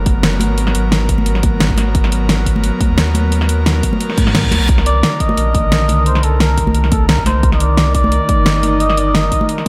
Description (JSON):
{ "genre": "liquid drum and bass", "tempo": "175 BPM", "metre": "4/4", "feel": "swing 53% on 16ths", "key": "unclear", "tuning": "A4 = 439 Hz", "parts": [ { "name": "airy breathy pad", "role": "sustained chords", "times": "0.0-9.7 s", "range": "D3 to Bb4", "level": "-23 LUFS", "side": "equal", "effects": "chorus" }, { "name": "warm sub bass", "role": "bass", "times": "0.0-9.3 s", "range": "Gb1 to Ab2", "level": "-18 LUFS", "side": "equal", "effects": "none" }, { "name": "electronic kick drum", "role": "drums", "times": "0.1-9.4 s", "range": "none", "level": "-19 LUFS", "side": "equal", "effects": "none" }, { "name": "pop drum kit", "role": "drums", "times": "0.1-9.6 s", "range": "hi-hat, snare drum", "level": "-20 LUFS", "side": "equal", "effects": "none" }, { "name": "congas", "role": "percussion", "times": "0.1-9.5 s", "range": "none", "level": "-25 LUFS", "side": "equal", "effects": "none" }, { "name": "reverse cymbal", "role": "sound effects", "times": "4.1-4.7 s", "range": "none", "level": "-25 LUFS", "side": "equal", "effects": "none" }, { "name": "trumpet with cup mute", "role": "melody", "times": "4.9-9.5 s", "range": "A4 to Eb5", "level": "-20 LUFS", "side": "equal", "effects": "diffuse ambient delay" } ], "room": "light reverb", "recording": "none", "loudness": "-14 LUFS", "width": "mono", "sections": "0.0-9.7 A section", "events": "reverse cymbal 4.1-4.7", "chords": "0.0 Abm9; 4.7 Cm9", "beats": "0.23 | 0.58 0.92 1.26 1.60 | 1.95 2.29 2.63 2.98 | 3.32 3.66 4.00 4.35 | 4.69 5.03 5.38 5.72 | 6.06 6.41 6.75 7.09 | 7.43 7.78 8.12 8.46 | 8.80 9.15 9.49" }